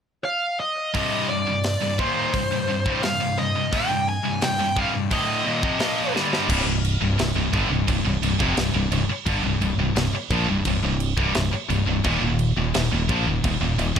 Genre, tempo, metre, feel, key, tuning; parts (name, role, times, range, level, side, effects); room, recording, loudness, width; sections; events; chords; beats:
heavy metal; 86 BPM; 4/4; straight; C minor; A4 = 440 Hz
high-gain lead guitar; melody; 0.2-6.1 s; C5 to Ab5; -25 LUFS; equal; distortion, tape echo
scooped high-gain guitar; riff; 0.9-14.0 s; C2 to Bb3; -26 LUFS; left 10 dB; distortion
scooped high-gain guitar; riff; 0.9-14.0 s; C2 to Bb3; -25 LUFS; right 8 dB; distortion
tight metal drum kit; drums; 0.9-14.0 s; crash cymbal, hi-hat, kick drum, snare drum; -28 LUFS; equal
modern bright fingered electric bass; bass; 6.5-14.0 s; C1 to Bb1; -25 LUFS; equal
small room ambience; lossy compression artefacts; -20 LUFS; side -8 dB against mid
0.9-6.5 A section; 6.5-14.0 B section
drum fill 6.1-6.5
0.0 N.C.; 0.9 Cm; 6.5 C5; 12.0 Eb5
0.25 | 0.94 1.64 2.33 3.02 | 3.72 4.41 5.10 5.80 | 6.49 7.18 7.88 8.57 | 9.27 9.96 10.66 11.35 | 12.05 12.74 13.44